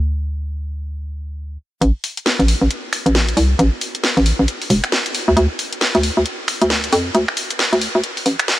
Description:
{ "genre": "UK garage, two-step garage", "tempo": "135 BPM", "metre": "4/4", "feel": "swing 61% on 16ths", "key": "unclear", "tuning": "A4 = 440 Hz", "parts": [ { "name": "hollow knocking FM bass", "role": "bass", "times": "0.0-8.4 s", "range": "E1 to F2", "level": "-15 LUFS", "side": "equal", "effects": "none" }, { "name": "garage drum kit", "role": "drums", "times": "1.8-8.6 s", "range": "finger snaps, hi-hat, snare drum", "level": "-19 LUFS", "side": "equal", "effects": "high-pass filter on hats, high-pass filter on snare" } ], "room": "light reverb, digital ambience", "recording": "high-pass filter", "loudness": "-15 LUFS", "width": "side -15 dB against mid", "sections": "0.0-1.8 A section; 1.8-8.6 B section", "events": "build-up 1.8-8.6; filter sweep 1.8-8.6", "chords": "none" }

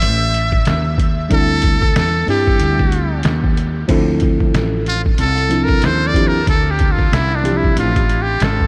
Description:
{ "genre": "hip hop, jazz-hop", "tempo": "93 BPM", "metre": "4/4", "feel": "swing 59% on 16ths", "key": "D minor", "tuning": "A4 = 443 Hz", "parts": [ { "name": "trumpet with metal mute", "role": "melody", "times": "0.0-8.7 s", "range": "D4 to E5", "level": "-22 LUFS", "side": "equal", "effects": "delay" }, { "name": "woody fretless electric bass", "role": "bass", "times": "0.0-8.7 s", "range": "G#1 to G2", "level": "-21 LUFS", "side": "equal", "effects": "none" }, { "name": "trip hop sampler-style drum kit", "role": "drums", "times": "0.0-8.7 s", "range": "crash cymbal, hi-hat, kick drum, snare drum", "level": "-20 LUFS", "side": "equal", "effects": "none" }, { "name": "mellow tine electric piano", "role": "accompaniment", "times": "1.3-7.9 s", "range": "E3 to A4", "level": "-23 LUFS", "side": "equal", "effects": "none" } ], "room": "moderate huge ambient reverb, RT60 5.0 s", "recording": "dreamy mix soaked in reverb", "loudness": "-16 LUFS", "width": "mono", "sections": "0.0-3.9 A section; 3.9-8.7 B section", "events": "muted trumpet solo 3.9-8.7", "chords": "0.0 D9sus4; 3.9 Dm9" }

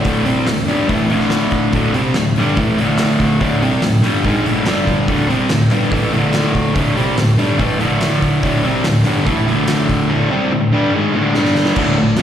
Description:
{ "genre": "garage rock duo or trio", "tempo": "143 BPM", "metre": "4/4", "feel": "straight", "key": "unclear", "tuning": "A4 = 438 Hz", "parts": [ { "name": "fuzz guitar", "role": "riff", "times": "0.0-12.2 s", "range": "D2 to C4", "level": "-14 LUFS", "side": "equal", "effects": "distortion, slapback echo" }, { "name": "oversized low-tuned drum kit", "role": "drums", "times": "0.0-12.2 s", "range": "crash cymbal, hi-hat, kick drum, snare drum", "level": "-20 LUFS", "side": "equal", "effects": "none" }, { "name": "group handclap", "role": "percussion", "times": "0.5-9.8 s", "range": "none", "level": "-31 LUFS", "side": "right 1 dB", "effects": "none" } ], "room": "studio ambience", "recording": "live gig heard through the venue's PA, recital hall reverb", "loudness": "-13 LUFS", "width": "side -9 dB against mid", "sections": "0.0-11.8 A section", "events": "drum fill 11.4-11.8", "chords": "0.0 D5; 4.7 G5; 5.1 D5; 11.4 G5" }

